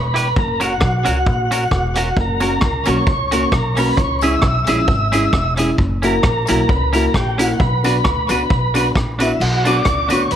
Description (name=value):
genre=ska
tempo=133 BPM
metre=4/4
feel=swing 55% on 8ths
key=B harmonic minor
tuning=A4 = 437 Hz
part: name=tonewheel organ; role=melody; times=0.0-10.4 s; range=E4 to E5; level=-20 LUFS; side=equal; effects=fast rotary speaker, tape echo, plate reverb
part: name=upright bass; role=bass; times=0.0-10.4 s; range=E1 to F#2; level=-21 LUFS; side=equal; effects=none
part: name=semi-hollow electric guitar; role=accompaniment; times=0.1-10.2 s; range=C#4 to B4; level=-22 LUFS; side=right 2 dB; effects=plate reverb
part: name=vintage drum kit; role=drums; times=0.2-10.4 s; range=crash cymbal, hi-hat, kick drum, rim click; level=-20 LUFS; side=equal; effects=none
part: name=tambourine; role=percussion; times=0.2-10.2 s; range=none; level=-34 LUFS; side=left 14 dB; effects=none
part: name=dark upright piano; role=stabs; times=2.4-10.3 s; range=G#3 to F#4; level=-21 LUFS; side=left 1 dB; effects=plate reverb
room=light reverb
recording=vinyl crackle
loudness=-14 LUFS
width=side -9 dB against mid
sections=0.0-9.4 A section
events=none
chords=0.4 F#; 4.0 C#m; 5.8 F#7; 7.6 Bm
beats=| 0.36 0.81 1.27 1.72 | 2.17 2.62 3.08 3.53 | 3.98 4.43 4.88 5.34 | 5.79 6.24 6.69 7.14 | 7.60 8.05 8.50 8.95 | 9.40 9.86 10.31